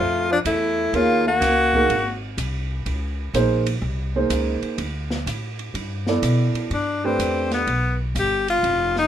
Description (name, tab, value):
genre	jazz, small-group swing and bop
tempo	125 BPM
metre	4/4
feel	swing 67% on 8ths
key	unclear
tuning	A4 = 441 Hz
part	breathy tenor saxophone	melody	0.0-2.2, 6.7-9.1 s	B3 to G4	-20 LUFS	left 2 dB	none
part	breathy alto saxophone	second line	0.0-2.2 s	F3 to Bb3	-23 LUFS	equal	none
part	upright bass	bass	0.0-9.1 s	F1 to B2	-26 LUFS	equal	none
part	open jazz drum kit	drums	0.5-9.0 s	hi-hat, kick drum, ride cymbal, snare drum	-31 LUFS	right 2 dB	none
part	warm upright piano	accompaniment	0.9-7.6 s	A3 to D5	-22 LUFS	right 4 dB	none
room	light reverb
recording	minimal, uncompressed stereo recording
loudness	-19 LUFS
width	side -10 dB against mid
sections	0.0-6.7 A section; 6.7-9.1 B section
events	tenor saxophone solo 6.7-9.1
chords	0.0 F; 0.9 Ebm7; 1.9 Ab; 2.9 Db5; 4.8 D5; 5.7 G